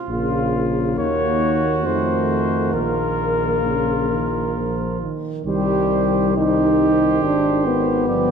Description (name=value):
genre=classical, brass quintet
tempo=67 BPM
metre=3/4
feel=rubato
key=Bb minor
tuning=A4 = 440 Hz
part: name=warm trumpet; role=second line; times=0.0-8.3 s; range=F4 to G4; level=-27 LUFS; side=right 8 dB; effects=none
part: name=mellow trumpet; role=melody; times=0.1-8.3 s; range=F4 to D5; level=-25 LUFS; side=left 5 dB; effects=none
part: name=clear French horn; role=accompaniment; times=0.1-8.3 s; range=G3 to Eb4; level=-21 LUFS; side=left 2 dB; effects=none
part: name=warm trombone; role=accompaniment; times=0.1-8.3 s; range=Db3 to F3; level=-25 LUFS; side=right 5 dB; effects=none
part: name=clear bass trombone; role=bass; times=0.1-8.3 s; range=G1 to F2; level=-24 LUFS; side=right 1 dB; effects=none
room=wet scoring stage reverb, RT60 1.5 s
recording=dark, warm production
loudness=-17 LUFS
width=side -6 dB against mid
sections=0.0-5.5 A section; 5.5-8.3 B section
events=none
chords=0.1 Bbm; 1.0 Ebm; 1.9 F7; 2.7 Bbm; 5.5 Cm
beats=| 0.10 0.98 1.86 | 2.75 3.65 4.56 | 5.46 6.37 7.23 | 8.08